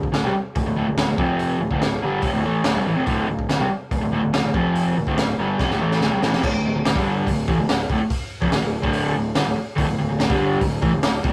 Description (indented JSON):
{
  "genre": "garage rock duo or trio",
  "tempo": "143 BPM",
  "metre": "4/4",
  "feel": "straight",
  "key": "unclear",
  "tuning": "A4 = 438 Hz",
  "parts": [
    { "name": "raw garage guitar", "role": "riff", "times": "0.0-11.3 s", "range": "D2 to A3", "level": "-23 LUFS", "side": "equal", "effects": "overdrive" },
    { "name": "fuzz fingered electric bass", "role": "bass", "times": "0.0-11.3 s", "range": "D1 to C2", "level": "-32 LUFS", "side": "equal", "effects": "overdrive" },
    { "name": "crunchy breakbeat drum kit", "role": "drums", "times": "0.0-11.3 s", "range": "crash cymbal, hi-hat, kick drum, snare drum", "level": "-26 LUFS", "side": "equal", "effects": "none" }
  ],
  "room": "moderate booth ambience, RT60 0.2 s",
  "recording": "rough rehearsal-room recording, tube saturation",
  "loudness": "-21 LUFS",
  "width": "mono",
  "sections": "0.0-6.4 A section; 6.4-11.3 B section",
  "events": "drum fill 5.6-6.4",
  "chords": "0.0 D5; 1.2 F5; 1.6 D5; 4.5 F5; 5.0 D5"
}